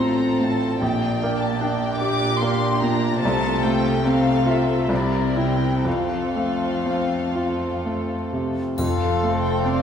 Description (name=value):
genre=classical, romantic movement for piano and orchestra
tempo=59-76 BPM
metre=3/4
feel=rubato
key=F major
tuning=A4 = 440 Hz
part: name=clear baby grand piano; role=melody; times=0.0-9.8 s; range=A1 to A4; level=-23 LUFS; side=equal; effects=none
part: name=dark chamber violin section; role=melody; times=0.0-9.8 s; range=D5 to D6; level=-27 LUFS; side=left 3 dB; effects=none
part: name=warm chamber violin section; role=second line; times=0.0-9.8 s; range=C4 to D5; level=-30 LUFS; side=left 2 dB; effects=none
part: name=dark studio viola section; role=accompaniment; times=0.0-9.8 s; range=F3 to D5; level=-27 LUFS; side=right 1 dB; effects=none
part: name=dark chamber cello section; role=bass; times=0.0-9.8 s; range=F2 to C3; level=-27 LUFS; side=right 1 dB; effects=none
part: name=clear clarinet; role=second line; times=8.8-9.8 s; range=A4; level=-32 LUFS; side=left 5 dB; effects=none
part: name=mellow hollow silver concert flute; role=second line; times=8.8-9.8 s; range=C6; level=-31 LUFS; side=equal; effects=none
part: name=mellow French horn section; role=sustained chords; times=8.8-9.8 s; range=C4 to A4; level=-30 LUFS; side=left 5 dB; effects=none
part: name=dark chamber double bass section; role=bass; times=8.8-9.8 s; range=F1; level=-30 LUFS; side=right 8 dB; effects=none
part: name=timpani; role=percussion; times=8.8-9.8 s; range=F2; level=-28 LUFS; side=left 1 dB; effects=none
part: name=triangle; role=percussion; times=8.8-9.8 s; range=none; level=-41 LUFS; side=left 2 dB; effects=none
room=wet scoring stage reverb, RT60 1.8 s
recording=heard from further back in the room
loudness=-19 LUFS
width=side -8 dB against mid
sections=0.0-8.8 A section; 8.8-9.8 A section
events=none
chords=0.0 F/A; 0.8 Gm/Bb; 3.2 F/C; 4.9 C9; 5.9 F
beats=| 0.81 1.61 2.41 | 3.23 4.05 4.90 | 5.86 6.87 7.85 | 8.79 9.64